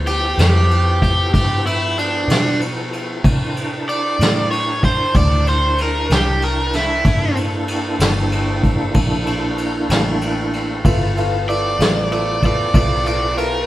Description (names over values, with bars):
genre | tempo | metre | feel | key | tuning
slow blues | 63 BPM (dotted quarters) | 12/8 | straight | unclear | A4 = 440 Hz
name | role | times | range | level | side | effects
tonewheel organ | sustained chords | 0.0-13.7 s | F3 to A5 | -25 LUFS | equal | slow rotary speaker, chorus vibrato
vintage muted fingered electric bass | bass | 0.0-13.7 s | G1 to C3 | -21 LUFS | equal | none
cranked stack guitar | melody | 0.1-13.7 s | D4 to D5 | -19 LUFS | right 1 dB | overdrive
vintage brush drum kit | drums | 0.1-13.5 s | kick drum, ride cymbal, snare drum | -19 LUFS | equal | none
clear grand piano | accompaniment | 10.8-13.6 s | F4 to F5 | -23 LUFS | left 1 dB | none
room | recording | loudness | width
moderate stone room reverb, RT60 1.0 s | band playing live in one room | -15 LUFS | side -15 dB against mid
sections
0.0-13.7 A section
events
overdriven electric guitar solo 0.0-13.7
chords
0.0 G13; 3.2 C13; 10.8 G13